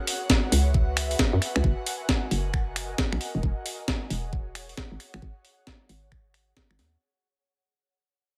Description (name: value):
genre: UK garage, two-step garage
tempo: 134 BPM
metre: 4/4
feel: swing 63% on 16ths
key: unclear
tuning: A4 = 441 Hz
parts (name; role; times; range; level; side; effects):
- airy breathy pad; sustained chords; 0.0-7.0 s; F#4 to F#5; -42 LUFS; equal; chorus, sidechain pumping
- ethereal airy pad; texture; 0.0-7.0 s; G#4 to G#5; -41 LUFS; equal; ensemble chorus, built-in reverb, sidechain pumping
- breakbeat sampler-style drum kit; drums; 0.1-6.9 s; finger snaps, hi-hat, snare drum; -30 LUFS; equal; none
- electronic kick drum; drums; 0.3-6.7 s; none; -29 LUFS; equal; none
- hollow knocking FM bass; bass; 0.5-7.0 s; E1 to F#2; -29 LUFS; equal; none
room: digital ambience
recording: none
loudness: -26 LUFS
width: mono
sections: 0.0-7.0 A section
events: fade-out 0.0-7.0; filter sweep on FM bass 0.0-7.0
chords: 0.0 C#m7; 1.6 F#add9; 3.2 Emaj9; 5.0 G#7sus4